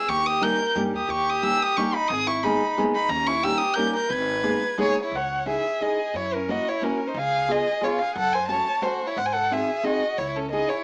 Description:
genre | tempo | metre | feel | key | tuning
musette waltz | 178 BPM | 3/4 | straight | G# harmonic minor, C# harmonic minor from 5.1 s | A4 = 441 Hz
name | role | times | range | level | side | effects
dark violin | melody | 0.0-10.8 s | A4 to G#6 | -27 LUFS | equal | none
rich violin | second line | 0.0-10.8 s | C#4 to C#5 | -31 LUFS | equal | none
upright bass | bass | 0.1-10.6 s | G#1 to G#2 | -38 LUFS | equal | none
fingerpicked steel-string acoustic guitar | accompaniment | 0.4-10.7 s | G3 to A4 | -29 LUFS | equal | none
room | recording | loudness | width
moderate studio reverb, RT60 0.6 s | small speaker sound | -24 LUFS | mono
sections
0.0-5.1 A section; 5.1-10.8 B section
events
none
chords
0.1 D#7; 2.1 G#madd9; 3.1 D#7; 4.1 G#madd9; 5.1 C#madd9; 6.1 F#7; 7.1 C#7; 8.2 F#m; 9.2 G#7; 10.2 C#madd9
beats
| 0.07 0.41 0.75 | 1.09 1.43 1.76 | 2.09 2.43 2.76 | 3.10 3.43 3.76 | 4.10 4.44 4.78 | 5.12 5.46 5.80 | 6.14 6.47 6.81 | 7.15 7.48 7.82 | 8.15 8.49 8.83 | 9.17 9.51 9.85 | 10.19 10.52

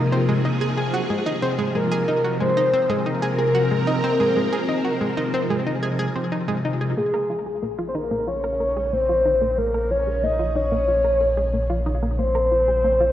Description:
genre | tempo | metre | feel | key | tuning
ambient, sequencer-driven space music | 92 BPM | 4/4 | straight | Bb minor | A4 = 440 Hz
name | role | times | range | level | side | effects
soft octave-layered synth lead | melody | 0.0-13.1 s | Ab4 to Eb5 | -22 LUFS | left 1 dB | chorus, ping-pong delay
phased string machine | sustained chords | 0.0-13.1 s | C3 to Bb4 | -26 LUFS | equal | ensemble chorus, phaser
analog pluck | riff | 0.0-13.1 s | Ab3 to Bb4 | -26 LUFS | equal | chorus, ping-pong delay
warm sub bass | bass | 7.0-13.1 s | Bb1 | -26 LUFS | equal | none
room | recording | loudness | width
wet concert hall reverb, RT60 2.4 s | worn, warbling old tape, cassette tape, warbly pitch drift | -19 LUFS | side -12 dB against mid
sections
0.0-7.0 A section; 7.0-13.1 B section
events
filter sweep on synth arpeggio sound 7.0-13.1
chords
0.0 Abadd9; 7.0 Bbm7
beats
0.45 1.10 | 1.75 2.40 3.06 3.71 | 4.36 5.01 5.67 6.32 | 6.97 7.62 8.28 8.93 | 9.58 10.23 10.88 11.54 | 12.19 12.84

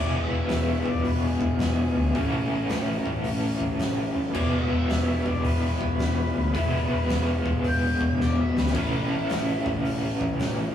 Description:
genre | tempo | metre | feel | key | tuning
blues rock power trio and southern rock | 109 BPM | 4/4 | swing 65% on 8ths | E mixolydian | A4 = 440 Hz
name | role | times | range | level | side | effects
octave-fuzz lead guitar | melody | 0.0-9.7 s | E4 to G5 | -34 LUFS | equal | distortion
raw garage guitar | riff | 0.0-10.7 s | A2 to E4 | -26 LUFS | left 1 dB | overdrive, tremolo
vintage muted fingered electric bass | bass | 0.0-10.7 s | E1 to D2 | -28 LUFS | equal | none
oversized low-tuned drum kit | drums | 0.5-10.6 s | crash cymbal, hi-hat, kick drum, snare drum | -30 LUFS | equal | none
room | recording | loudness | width
light reverb | rough rehearsal-room recording, small room ambience | -22 LUFS | side -10 dB against mid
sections
0.0-10.7 A section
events
drum fill 8.2-8.8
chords
0.0 E; 2.2 A; 4.4 E; 8.8 A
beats
0.51 1.06 1.60 | 2.15 2.70 3.25 3.80 | 4.35 4.90 5.45 6.00 | 6.55 7.10 7.65 8.20 | 8.75 9.30 9.85 10.40

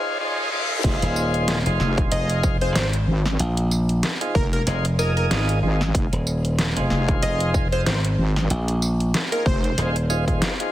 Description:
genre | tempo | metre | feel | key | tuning
glitch hop | 94 BPM | 4/4 | swing 56% on 16ths | F minor | A4 = 439 Hz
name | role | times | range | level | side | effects
tonewheel organ | stabs | 0.0-10.7 s | Eb4 to Eb5 | -27 LUFS | equal | slow rotary speaker, sidechain pumping, digital delay
riser and reverse cymbal | sound effects | 0.0-0.8 s | none | -28 LUFS | left 2 dB | none
wobble bass | bass | 0.8-9.8 s | F1 to Ab1 | -22 LUFS | equal | chorus
dubstep drum kit | drums | 0.8-10.7 s | crash cymbal, hi-hat, snare drum, tambourine | -26 LUFS | equal | overdrive, high-pass filter on snare, high-pass filter on hats, high-pass filter on perc, high-pass filter on cymbals, high-pass filter on room
electronic kick drum | drums | 0.8-10.4 s | none | -23 LUFS | equal | overdrive
slap bass | bass | 1.0-10.4 s | Eb1 to Bb1 | -22 LUFS | equal | none
plucky unison lead | melody | 2.1-10.0 s | Bb4 to Eb5 | -29 LUFS | equal | digital delay
room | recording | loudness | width
light reverb | heavily compressed radio sound, multiband compression, high-pass filter | -19 LUFS | side -14 dB against mid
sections
0.8-10.7 A section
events
break 0.0-0.8; riser 0.0-0.8; reverse cymbal 0.0-0.8; drop 0.8-10.7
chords
0.0 Fm7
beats
0.20 | 0.84 1.48 2.12 2.76 | 3.39 4.03 4.67 5.31 | 5.95 6.59 7.22 7.86 | 8.50 9.14 9.78 10.42

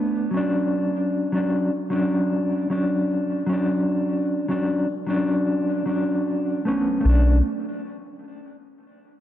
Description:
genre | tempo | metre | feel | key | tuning
trip hop | 76 BPM | 4/4 | swing 53% on 16ths | unclear | A4 = 440 Hz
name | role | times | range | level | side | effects
mellow electric guitar | accompaniment | 0.0-7.5 s | F#3 to D4 | -21 LUFS | equal | tremolo, tape echo
round analog bass | bass | 7.0-7.4 s | B1 | -16 LUFS | equal | none
room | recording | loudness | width
wet plate reverb, RT60 3.0 s | dreamy mix soaked in reverb, nothing above 7.6 kHz | -20 LUFS | side -12 dB against mid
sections
0.0-7.0 A section; 7.0-9.2 B section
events
none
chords
0.0 Bm7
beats
| 0.73 1.52 2.31 3.10 | 3.89 4.68 5.47 6.26 | 7.05

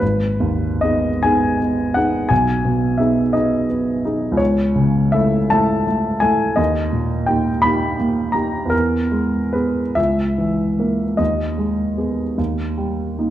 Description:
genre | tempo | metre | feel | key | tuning
classical, romantic nocturne for solo piano | 46-59 BPM (dotted quarters) | 12/8 | rubato | G# minor | A4 = 440 Hz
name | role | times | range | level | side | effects
warm baby grand piano | solo | 0.0-13.3 s | G#1 to B5 | -16 LUFS | equal | none
room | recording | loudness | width
wet recital hall reverb, RT60 1.4 s | dark, warm production | -16 LUFS | side -12 dB against mid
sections
0.0-13.3 A section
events
none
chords
0.0 G#m; 2.3 G#m/B; 4.4 A/C#; 6.6 D#; 8.7 E; 10.0 A#dim/C#; 11.2 G#m/D#; 12.4 D#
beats
| 0.01 1.23 2.30 3.35 | 4.39 5.53 6.58 7.63 | 8.72 9.98 11.19 12.38

